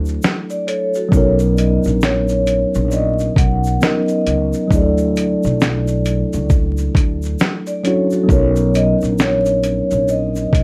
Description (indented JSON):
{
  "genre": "lo-fi hip hop",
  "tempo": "67 BPM",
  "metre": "4/4",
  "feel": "swing 62% on 16ths",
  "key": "B major",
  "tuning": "A4 = 440 Hz",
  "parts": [
    { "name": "mellow tine electric piano", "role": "accompaniment", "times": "0.0-10.6 s", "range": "F#3 to A#4", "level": "-21 LUFS", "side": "equal", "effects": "cassette tape, low-pass filter" },
    { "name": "upright bass", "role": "bass", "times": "0.0-10.6 s", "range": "A#1 to D2", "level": "-22 LUFS", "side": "equal", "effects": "none" },
    { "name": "dusty soul sampler-style drum kit", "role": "drums", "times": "0.1-10.6 s", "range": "hi-hat, kick drum, shaker, snare drum", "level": "-19 LUFS", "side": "equal", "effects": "overdrive" },
    { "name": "tube shaker", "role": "percussion", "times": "0.1-10.5 s", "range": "none", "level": "-45 LUFS", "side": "equal", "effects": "none" },
    { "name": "vibraphone with soft mallets", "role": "second line", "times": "0.5-1.4, 7.7-8.6 s", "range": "F#4 to D5", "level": "-25 LUFS", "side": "equal", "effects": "low-pass filter" },
    { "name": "vibraphone with soft mallets", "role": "melody", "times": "1.1-10.6 s", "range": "C#5 to F#5", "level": "-23 LUFS", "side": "equal", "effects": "low-pass filter" }
  ],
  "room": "light reverb",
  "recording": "vinyl crackle",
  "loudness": "-16 LUFS",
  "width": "mono",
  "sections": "0.0-10.6 A section",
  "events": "none",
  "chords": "0.0 Dmaj9; 1.1 Bmaj9; 4.7 Dmaj9; 8.3 Bmaj9",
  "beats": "0.23 | 1.12 2.02 2.91 3.81 | 4.70 5.60 6.50 7.39 | 8.29 9.18 10.08"
}